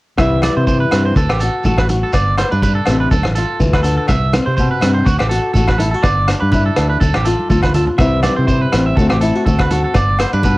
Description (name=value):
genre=highlife guitar band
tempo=123 BPM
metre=4/4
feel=swing 55% on 16ths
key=C major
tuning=A4 = 440 Hz
part: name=flamenco guitar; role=accompaniment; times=0.2-10.6 s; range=G2 to F#4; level=-19 LUFS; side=left 2 dB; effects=cassette tape
part: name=electric guitar at the edge of break-up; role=arpeggios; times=0.2-10.6 s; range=F#4 to E5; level=-20 LUFS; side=right 3 dB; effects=cassette tape, analog delay
part: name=fingered electric bass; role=bass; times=0.2-10.6 s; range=G1 to C3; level=-17 LUFS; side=equal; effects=none
part: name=vintage drum kit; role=drums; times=0.2-10.6 s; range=hi-hat, kick drum, rim click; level=-18 LUFS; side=equal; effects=cassette tape
part: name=agogo bells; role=percussion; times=0.2-10.3 s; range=none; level=-26 LUFS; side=left 3 dB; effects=none
part: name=congas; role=percussion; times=0.2-10.6 s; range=none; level=-25 LUFS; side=right 1 dB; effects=none
part: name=shekere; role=percussion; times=0.2-10.6 s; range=none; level=-30 LUFS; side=right 1 dB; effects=none
room=light reverb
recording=home recording on cassette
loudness=-12 LUFS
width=side -20 dB against mid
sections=0.2-10.6 A section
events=drum fill 7.4-8.0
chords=0.2 C; 1.2 D; 2.1 G; 3.1 Dm; 4.1 C; 5.1 D; 6.0 G; 7.0 Dm; 8.0 C; 9.0 D7; 10.0 G